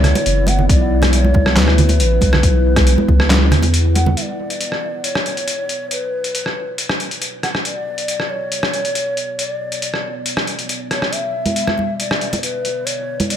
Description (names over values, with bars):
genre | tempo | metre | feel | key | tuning
deep dubstep | 138 BPM | 4/4 | half-time | B minor | A4 = 445 Hz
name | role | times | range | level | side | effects
breathy mellow low ney | melody | 0.0-13.4 s | B4 to F#5 | -23 LUFS | left 1 dB | dub echo
deep dark ambient pad | sustained chords | 0.0-13.4 s | B3 to F#4 | -26 LUFS | left 1 dB | chorus, built-in reverb
saturated sub bass | bass | 0.0-4.2 s | F#1 to E2 | -15 LUFS | equal | none
trip hop sampler-style drum kit | drums | 0.0-13.4 s | handclaps, hi-hat, rim click, snare drum | -20 LUFS | left 1 dB | none
congas | percussion | 0.0-4.2, 11.5-13.3 s | none | -22 LUFS | right 3 dB | dub echo
electronic kick drum | drums | 0.7-3.2 s | none | -15 LUFS | equal | none
room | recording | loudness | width
light reverb, digital ambience | echo-heavy mix | -15 LUFS | side -10 dB against mid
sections
0.0-4.2 A section; 4.2-13.4 B section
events
drop 0.0-4.2; filter sweep on ambient pad 4.2-13.4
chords
0.0 Bsus2; 4.2 Bmadd9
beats
0.26 | 0.69 1.13 1.56 2.00 | 2.43 2.87 3.30 3.74 | 4.17 4.61 5.04 5.47 | 5.91 6.34 6.78 7.21 | 7.65 8.08 8.52 8.95 | 9.39 9.82 10.26 10.69 | 11.13 11.56 12.00 12.43 | 12.87 13.30